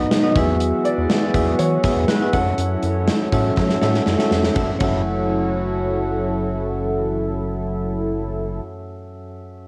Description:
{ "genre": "1980s-style pop", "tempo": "121 BPM", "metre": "4/4", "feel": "straight", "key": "F# minor", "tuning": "A4 = 436 Hz", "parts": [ { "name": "warm grand piano", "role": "melody", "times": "0.0-4.0 s", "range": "B4 to F#5", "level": "-29 LUFS", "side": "equal", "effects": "cassette tape, analog delay, plate reverb" }, { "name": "soft electric-piano-like synth keys", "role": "accompaniment", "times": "0.0-9.7 s", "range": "F#2 to E5", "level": "-25 LUFS", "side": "equal", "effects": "chorus, tremolo, cassette tape, plate reverb" }, { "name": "lush unison pad", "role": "sustained chords", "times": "0.0-8.4 s", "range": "B2 to F#4", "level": "-28 LUFS", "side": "equal", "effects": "chorus, cassette tape" }, { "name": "rubbery square bass", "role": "bass", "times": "0.0-8.6 s", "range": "F#1 to F#3", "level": "-28 LUFS", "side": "equal", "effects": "none" }, { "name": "gated 80s drum kit", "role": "drums", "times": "0.1-4.9 s", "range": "hi-hat, kick drum, ride cymbal, snare drum", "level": "-23 LUFS", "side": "equal", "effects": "cassette tape" }, { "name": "mellow synth brass", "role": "stabs", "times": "3.8-8.6 s", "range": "F#3 to A4", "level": "-29 LUFS", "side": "equal", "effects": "chorus, cassette tape" } ], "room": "wet studio reverb, RT60 0.6 s", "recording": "home recording on cassette", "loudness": "-20 LUFS", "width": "mono", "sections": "0.0-4.6 A section; 4.6-8.5 B section", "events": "band accent 2.6-4.6; drum fill 3.6-4.6", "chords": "0.3 Eadd9; 2.3 F#m7" }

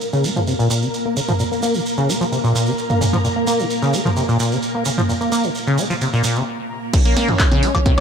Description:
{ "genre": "acid house", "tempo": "130 BPM", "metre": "4/4", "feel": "straight", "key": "Bb minor", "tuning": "A4 = 441 Hz", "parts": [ { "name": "string machine, full ensemble", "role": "sustained chords", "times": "0.0-8.0 s", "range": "Bb3 to Db5", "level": "-24 LUFS", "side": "equal", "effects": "ensemble chorus, sidechain pumping" }, { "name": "shekere", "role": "percussion", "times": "0.0-6.4 s", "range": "none", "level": "-26 LUFS", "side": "right 5 dB", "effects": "none" }, { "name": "acid bass, saw", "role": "riff", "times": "0.1-8.0 s", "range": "Bb2 to Bb3", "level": "-19 LUFS", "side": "equal", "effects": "tube saturation, lush chorus, vintage 12-bit sampler grit, sidechain pumping, ping-pong delay" }, { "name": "punchy analog drum machine", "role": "drums", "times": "0.4-8.0 s", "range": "congas, crash cymbal, handclaps, hi-hat, snare drum, toms, woodblock", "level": "-21 LUFS", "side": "right 1 dB", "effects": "low-pass filter on hats, small room reverb, low-pass filter on snare, low-pass filter on toms, low-pass filter on perc, low-pass filter on cymbals" }, { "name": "electronic kick drum", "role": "drums", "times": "6.9-8.0 s", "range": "none", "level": "-15 LUFS", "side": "equal", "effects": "small room reverb" } ], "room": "light reverb", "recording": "none", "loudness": "-16 LUFS", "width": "side -7 dB against mid", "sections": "0.0-6.9 A section; 6.9-8.0 B section", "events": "filter sweep on drum 0.0-6.9; filter sweep on acid bass 0.0-6.9; break 6.5-6.9; drop 6.9-8.0", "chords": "0.0 Bbm" }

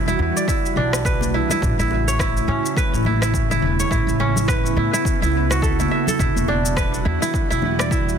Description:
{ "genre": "organic downtempo", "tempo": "105 BPM", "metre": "4/4", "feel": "swing 58% on 16ths", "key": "unclear", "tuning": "A4 = 441 Hz", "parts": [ { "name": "ethereal airy pad", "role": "sustained chords", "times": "0.0-8.2 s", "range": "C#3 to F#4", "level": "-25 LUFS", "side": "right 2 dB", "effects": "ensemble chorus, built-in reverb, sidechain pumping" }, { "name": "kora", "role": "arpeggios", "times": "0.0-8.2 s", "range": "C#4 to E5", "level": "-22 LUFS", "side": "right 2 dB", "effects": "ping-pong delay" }, { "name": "upright bass", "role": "bass", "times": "0.0-8.1 s", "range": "E1 to A2", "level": "-23 LUFS", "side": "equal", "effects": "sidechain pumping" }, { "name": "electronic shaker and rim click", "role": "drums", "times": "0.1-8.2 s", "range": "none", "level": "-28 LUFS", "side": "left 2 dB", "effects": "overdrive, studio reverb" }, { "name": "electronic kick drum", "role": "drums", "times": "0.5-8.0 s", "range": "none", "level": "-23 LUFS", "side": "equal", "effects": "overdrive, studio reverb" }, { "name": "bongos and congas", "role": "percussion", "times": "0.9-7.8 s", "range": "none", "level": "-30 LUFS", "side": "left 6 dB", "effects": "none" } ], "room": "small room ambience", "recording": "dense, heavily limited modern master", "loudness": "-17 LUFS", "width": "side -7 dB against mid", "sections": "0.0-8.2 A section", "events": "none", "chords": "0.0 Emadd9; 1.6 A; 6.2 Emadd9" }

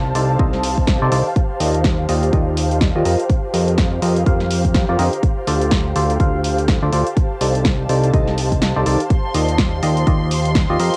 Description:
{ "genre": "piano house", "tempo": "124 BPM", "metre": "4/4", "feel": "swing 59% on 16ths", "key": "unclear", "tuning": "A4 = 440 Hz", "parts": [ { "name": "barking FM electric piano", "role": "riff", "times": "0.0-10.9 s", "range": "C3 to F5", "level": "-24 LUFS", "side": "equal", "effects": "chorus, phaser, tremolo, sidechain pumping, low-pass filter, cassette tape" }, { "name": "fat analog bass", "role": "bass", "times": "0.0-10.9 s", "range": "C2 to F2", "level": "-22 LUFS", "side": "equal", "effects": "sidechain pumping" }, { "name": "ethereal airy pad", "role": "texture", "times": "0.0-11.0 s", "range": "G4 to A5", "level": "-26 LUFS", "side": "equal", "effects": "ensemble chorus, built-in reverb, sidechain pumping, cassette tape" }, { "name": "punchy analog drum machine", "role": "drums", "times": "0.2-11.0 s", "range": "hi-hat, snare drum", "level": "-26 LUFS", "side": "equal", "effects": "cassette tape" }, { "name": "electronic kick drum", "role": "drums", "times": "0.4-10.7 s", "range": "none", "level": "-20 LUFS", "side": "equal", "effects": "cassette tape" }, { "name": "warm studio violin section", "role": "sustained chords", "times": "9.1-11.0 s", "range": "C6", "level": "-30 LUFS", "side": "equal", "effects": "sidechain pumping, cassette tape" } ], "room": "moderate small room ambience, RT60 0.5 s", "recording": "home recording on cassette", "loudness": "-17 LUFS", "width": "mono", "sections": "0.0-11.0 A section", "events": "kick drops out 8.6-9.1", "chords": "0.0 Cm69; 1.4 Ebmaj9; 3.1 F9sus4; 5.2 Dm7; 7.2 Cm69; 9.1 Ebmaj9" }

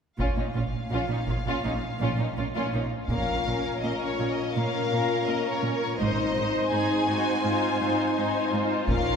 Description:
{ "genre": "cinematic, epic orchestral film score", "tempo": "83 BPM", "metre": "4/4", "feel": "straight", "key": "Bb minor", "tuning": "A4 = 442 Hz", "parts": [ { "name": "rich symphonic violin section", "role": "melody", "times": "0.2-9.2 s", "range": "Db5 to Ab5", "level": "-32 LUFS", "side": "left 3 dB", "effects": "none" }, { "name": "warm symphonic violin section", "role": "second line", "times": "0.2-9.2 s", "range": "Eb4 to C5", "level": "-32 LUFS", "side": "left 3 dB", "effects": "none" }, { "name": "warm symphonic viola section", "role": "accompaniment", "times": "0.2-9.2 s", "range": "Db4 to C5", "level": "-30 LUFS", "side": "equal", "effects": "none" }, { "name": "rich symphonic cello section", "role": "bass", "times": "0.2-9.0 s", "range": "Ab2 to Bb2", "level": "-32 LUFS", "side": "right 2 dB", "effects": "none" }, { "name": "rich symphonic double bass section", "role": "bass", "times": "0.2-9.2 s", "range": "Ab1 to Bb1", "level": "-33 LUFS", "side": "right 2 dB", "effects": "none" }, { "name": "taiko ensemble", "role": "drums", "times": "0.2-4.5, 8.9-9.2 s", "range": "none", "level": "-32 LUFS", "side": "equal", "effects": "none" }, { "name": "dark French horn section", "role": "sustained chords", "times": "3.1-9.2 s", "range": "C4 to F4", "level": "-30 LUFS", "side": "left 1 dB", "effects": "none" } ], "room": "wet church reverb, RT60 3.2 s", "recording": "recorded in a church or concert hall", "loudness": "-24 LUFS", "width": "side -6 dB against mid", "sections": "0.2-3.1 A section; 3.1-9.2 B section", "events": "none", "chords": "0.2 Bbm; 6.0 Ab" }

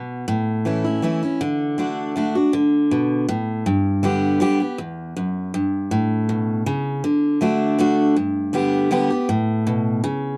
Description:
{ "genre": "bluegrass", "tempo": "160 BPM", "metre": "3/4", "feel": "straight", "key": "D major", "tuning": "A4 = 440 Hz", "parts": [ { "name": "picked steel-string acoustic guitar", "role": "solo", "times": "0.0-10.4 s", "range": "E2 to G4", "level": "-21 LUFS", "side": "equal", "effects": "none" } ], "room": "light reverb", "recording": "dry, close 1970s-style studio recording", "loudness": "-21 LUFS", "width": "mono", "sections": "0.0-2.5 A section; 2.5-10.4 B section", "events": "none", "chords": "0.3 A; 1.4 D; 2.5 D5; 3.7 G; 4.8 Em; 5.9 A; 7.0 D; 8.2 G; 9.3 A" }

